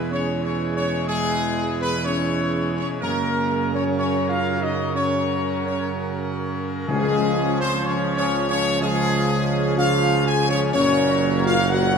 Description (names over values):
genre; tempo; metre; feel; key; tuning
classical; 62 BPM; 4/4; straight; unclear; A4 = 445 Hz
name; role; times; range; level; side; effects
warm trumpet section; melody; 0.0-12.0 s; G#4 to Ab5; -24 LUFS; left 1 dB; none
dark French horn section; sustained chords; 0.0-12.0 s; Ab3 to Ab4; -26 LUFS; left 5 dB; none
mellow trombone section; sustained chords; 0.0-12.0 s; Bb2 to G#3; -28 LUFS; right 5 dB; none
pipe organ, full organ; sustained chords; 0.0-12.0 s; B2 to Bb4; -28 LUFS; equal; none
dark tuba; bass; 0.0-12.0 s; Gb1 to Gb2; -26 LUFS; right 4 dB; none
timpani; percussion; 6.9-8.3 s; Db3; -28 LUFS; left 2 dB; none
room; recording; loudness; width
wet scoring stage reverb, RT60 1.4 s; minimal, uncompressed stereo recording; -19 LUFS; side -6 dB against mid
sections
0.0-12.0 A section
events
none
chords
0.0 E; 3.0 Gb; 6.9 Db; 10.7 Gb